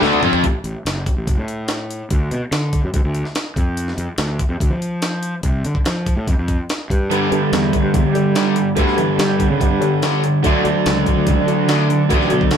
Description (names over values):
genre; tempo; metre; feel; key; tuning
classic rock; 144 BPM; 4/4; straight; unclear; A4 = 440 Hz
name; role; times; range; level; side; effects
bright reed electric piano; accompaniment; 0.0-0.3, 7.1-12.6 s; D4 to D5; -25 LUFS; left 3 dB; tremolo
overdriven electric guitar; riff; 0.0-0.4, 7.1-12.6 s; G2 to F4; -19 LUFS; right 6 dB; none
overdriven semi-hollow guitar; riff; 0.0-0.4, 7.1-12.6 s; G2 to F4; -20 LUFS; left 4 dB; none
fuzz fingered electric bass; bass; 0.0-12.6 s; F#1 to G3; -21 LUFS; equal; overdrive
breakbeat sampler-style drum kit; drums; 0.0-12.6 s; hi-hat, kick drum, snare drum, toms; -20 LUFS; equal; none
room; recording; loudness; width
moderate studio reverb, RT60 0.8 s; band playing live in one room; -16 LUFS; side -8 dB against mid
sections
0.4-12.6 A section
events
drum fill 0.0-0.4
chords
0.4 F#m; 2.1 N.C.; 6.9 Gadd9; 10.4 D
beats
0.02 | 0.43 0.85 1.27 1.69 | 2.10 2.52 2.94 3.35 | 3.77 4.19 4.61 5.02 | 5.44 5.86 6.28 6.69 | 7.11 7.53 7.94 8.36 | 8.78 9.19 9.61 10.03 | 10.44 10.86 11.27 11.69 | 12.11 12.52